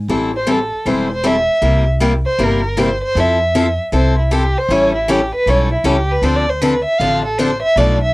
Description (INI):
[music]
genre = acoustic string swing (jazz manouche)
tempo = 156 BPM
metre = 4/4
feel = swing 64% on 8ths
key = A minor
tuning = A4 = 439 Hz
[part]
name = upright bass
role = bass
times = 0.0-8.1 s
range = E1 to F2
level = -18 LUFS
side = equal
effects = none
[part]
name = picked steel-string acoustic guitar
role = accompaniment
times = 0.1-8.0 s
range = B2 to A4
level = -16 LUFS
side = left 2 dB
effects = cassette tape
[part]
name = dark violin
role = melody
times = 0.4-8.1 s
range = E4 to F5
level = -17 LUFS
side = right 1 dB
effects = none
[sound]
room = light reverb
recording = home recording on cassette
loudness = -13 LUFS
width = side -20 dB against mid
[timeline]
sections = 0.1-8.1 A section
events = violin solo 0.1-8.1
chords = 0.1 Am7; 1.6 C7; 3.2 Fmaj7; 4.7 A7; 6.2 Dm7